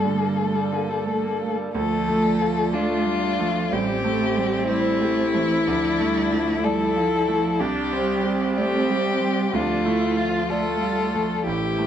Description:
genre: neoclassical piano and strings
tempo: 62 BPM (dotted quarters)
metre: 6/8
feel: rubato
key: D minor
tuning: A4 = 440 Hz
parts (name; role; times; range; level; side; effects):
- rich violin; melody; 0.0-11.9 s; E4 to A4; -24 LUFS; left 6 dB; none
- warm cello; second line; 0.0-11.9 s; E3 to A3; -27 LUFS; right 4 dB; none
- bright concert grand piano; accompaniment; 0.0-11.9 s; A1 to D5; -28 LUFS; right 4 dB; none
- rich viola; accompaniment; 0.0-11.9 s; D3 to F4; -27 LUFS; right 2 dB; none
- hollow soft pad; sustained chords; 0.0-11.9 s; F3 to D5; -32 LUFS; left 1 dB; none
room: moderate large studio reverb, RT60 1.3 s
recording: dark, warm production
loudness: -20 LUFS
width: side -9 dB against mid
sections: 0.0-1.7 A section; 1.7-11.9 B section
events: none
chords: 0.0 Gmadd9; 1.7 Dm; 3.7 Am7; 5.7 Dm; 7.6 Csus2; 9.5 Dm

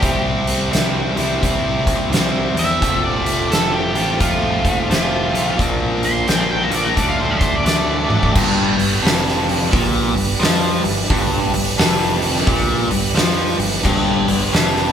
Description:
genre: blues rock power trio and southern rock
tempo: 87 BPM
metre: 4/4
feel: swing 63% on 8ths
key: G mixolydian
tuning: A4 = 440 Hz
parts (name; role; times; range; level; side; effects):
- octave-fuzz lead guitar; melody; 0.0-8.3 s; F4 to C6; -21 LUFS; right 1 dB; distortion
- tonewheel organ; sustained chords; 0.0-14.9 s; G3 to D5; -29 LUFS; right 7 dB; overdrive, chorus vibrato, stopped rotary speaker
- biting overdriven guitar; riff; 0.0-14.9 s; F2 to E4; -19 LUFS; left 1 dB; none
- growling picked electric bass; bass; 0.0-14.9 s; F1 to F2; -25 LUFS; equal; overdrive
- oversized low-tuned drum kit; drums; 0.0-14.9 s; crash cymbal, hi-hat, kick drum, snare drum, toms; -18 LUFS; equal; none
room: moderate large studio reverb, RT60 1.0 s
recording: band playing live in one room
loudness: -15 LUFS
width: side -8 dB against mid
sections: 0.0-8.3 A section; 8.3-14.9 B section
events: drum fill 8.0-8.3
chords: 0.0 C; 2.8 F; 5.6 Bb; 7.0 D; 8.3 G

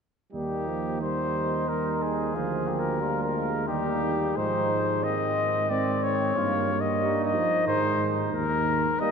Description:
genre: classical, brass quintet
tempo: 90 BPM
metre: 3/4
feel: rubato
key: Eb major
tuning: A4 = 442 Hz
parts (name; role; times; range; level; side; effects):
- warm trumpet; melody; 0.3-9.1 s; G4 to Eb5; -27 LUFS; left 4 dB; none
- mellow trumpet; second line; 0.3-9.1 s; C4 to G4; -33 LUFS; right 6 dB; none
- clear trombone; accompaniment; 0.3-9.1 s; Eb3 to Bb3; -33 LUFS; right 4 dB; none
- mellow French horn; accompaniment; 0.3-9.1 s; G3 to C4; -34 LUFS; left 1 dB; none
- mellow tuba; bass; 0.3-8.9 s; D2 to Ab2; -31 LUFS; right 3 dB; none
room: wet cathedral reverb, RT60 4.3 s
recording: none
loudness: -24 LUFS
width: side -6 dB against mid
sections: 0.3-9.1 A section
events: none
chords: 0.3 Eb; 2.4 Bb7/D; 3.7 Eb; 4.4 Ab; 6.4 Eb/G; 7.7 Ab; 8.3 Eb

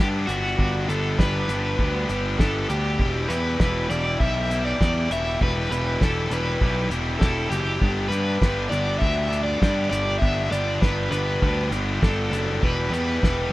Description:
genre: indie rock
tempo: 100 BPM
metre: 4/4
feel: straight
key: G major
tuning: A4 = 440 Hz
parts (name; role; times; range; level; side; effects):
- crunchy overdriven guitar; melody; 0.0-13.5 s; F#4 to E5; -27 LUFS; equal; harmonic tremolo
- overdriven electric guitar; riff; 0.0-13.5 s; E2 to G4; -31 LUFS; right 5 dB; wide subtle chorus, slapback echo
- scooped high-gain guitar; riff; 0.0-13.5 s; E2 to G4; -29 LUFS; left 5 dB; distortion
- fuzz picked electric bass; bass; 0.0-13.5 s; E1 to G2; -26 LUFS; equal; overdrive
- cloth-damped thuddy drum kit; drums; 0.3-13.4 s; hi-hat, kick drum, snare drum; -22 LUFS; equal; none
room: small room ambience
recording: rough home demo mix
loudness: -20 LUFS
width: side -17 dB against mid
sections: 0.0-13.5 A section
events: none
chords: 0.0 Gmaj7; 3.0 Em; 7.8 G; 12.6 Em

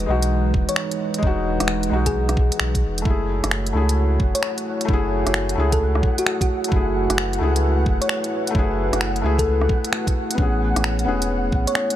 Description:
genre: future garage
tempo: 131 BPM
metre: 4/4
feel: swing 65% on 16ths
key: F# dorian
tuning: A4 = 441 Hz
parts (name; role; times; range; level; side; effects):
- felt-muted upright piano; accompaniment; 0.0-12.0 s; G#3 to G#4; -26 LUFS; left 2 dB; sidechain pumping, tape echo
- dark analog pad; sustained chords; 0.0-12.0 s; E3 to C#5; -27 LUFS; equal; chorus, sidechain pumping
- warm sub bass; bass; 0.0-11.7 s; E1 to C#2; -22 LUFS; equal; tube saturation, sidechain pumping
- organic electronic drum kit; drums; 0.0-12.0 s; finger snaps, hi-hat, rim click; -24 LUFS; right 1 dB; small room ambience
- electronic kick drum; drums; 0.5-11.6 s; none; -21 LUFS; equal; small room ambience
- thumb-piano-like synth pluck; melody; 0.7-11.9 s; F#4 to C#5; -28 LUFS; left 1 dB; chorus, vintage 12-bit sampler grit, tape echo
- flickering grainy texture; texture; 3.6-12.0 s; F#5; -31 LUFS; equal; built-in reverb
room: light reverb, digital ambience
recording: none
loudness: -18 LUFS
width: side -12 dB against mid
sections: 0.0-12.0 A section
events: none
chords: 0.0 Emaj7; 3.1 F#m7; 10.4 Amaj7

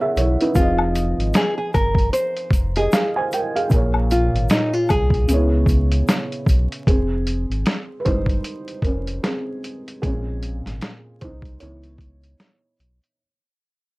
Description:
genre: lo-fi hip hop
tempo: 76 BPM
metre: 4/4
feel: swing 58% on 16ths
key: F minor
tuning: A4 = 440 Hz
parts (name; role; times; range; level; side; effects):
- nylon-string guitar; melody; 0.0-6.8 s; Eb4 to C5; -23 LUFS; equal; none
- felt-muted upright piano; accompaniment; 0.0-13.2 s; Bb2 to Ab5; -24 LUFS; right 1 dB; none
- sub bass with octave; bass; 0.2-13.0 s; F1 to Db2; -22 LUFS; equal; none
- lo-fi sampler-style drum kit; drums; 0.2-13.2 s; hi-hat, kick drum, snare drum; -20 LUFS; equal; overdrive, vintage 12-bit sampler grit
- tube shaker and woodblock; percussion; 0.2-6.7 s; none; -29 LUFS; left 5 dB; none
room: light reverb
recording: vinyl crackle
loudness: -18 LUFS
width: side -22 dB against mid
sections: 0.0-6.9 A section; 6.9-13.2 B section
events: fade-out 6.9-13.2; felt piano solo 6.9-13.2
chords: 0.0 Dbm7; 0.6 Fm7; 3.7 Bbm7; 5.3 Dbm7; 6.9 Fm7; 10.0 Bbm7; 11.6 Dbm7

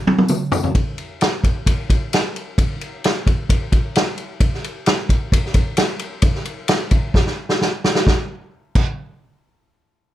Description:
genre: rock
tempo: 131 BPM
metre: 4/4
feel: straight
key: none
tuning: none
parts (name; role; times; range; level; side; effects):
- vintage drum kit; drums; 0.1-8.9 s; crash cymbal, kick drum, ride cymbal, snare drum, toms; -16 LUFS; equal; none
- tambourine; percussion; 0.3-0.6 s; none; -33 LUFS; left 7 dB; none
room: little or no reverb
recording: none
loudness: -17 LUFS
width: side -13 dB against mid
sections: 0.7-8.1 A section; 8.1-9.9 B section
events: drum fill 0.0-0.7, 7.2-8.1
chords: none

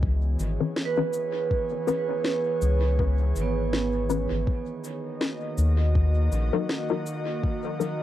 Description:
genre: ambient dub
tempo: 81 BPM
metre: 4/4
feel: swing 57% on 16ths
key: C# dorian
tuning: A4 = 436 Hz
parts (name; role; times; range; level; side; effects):
- airy breathy pad; sustained chords; 0.0-8.0 s; D#3 to D#5; -32 LUFS; equal; chorus, cassette tape
- round analog bass; bass; 0.0-6.5 s; G#1 to D#2; -23 LUFS; left 1 dB; none
- electronic kick drum; drums; 0.0-7.6 s; none; -26 LUFS; left 1 dB; overdrive, small room ambience, cassette tape
- electronic cabasa and snare drum; drums; 0.4-8.0 s; none; -32 LUFS; left 1 dB; overdrive, small room ambience, cassette tape, dub echo
- filtered dub chord stab; stabs; 0.6-8.0 s; E3 to B4; -31 LUFS; left 6 dB; phaser, lush chorus, cassette tape, dub echo, plate reverb
- vibraphone with hard mallets; arpeggios; 0.9-4.6 s; B3 to B4; -29 LUFS; right 6 dB; cassette tape, dub echo, plate reverb
room: light reverb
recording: home recording on cassette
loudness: -23 LUFS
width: side -13 dB against mid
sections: 0.0-8.0 A section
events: none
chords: 0.0 C#m7; 4.5 D#m

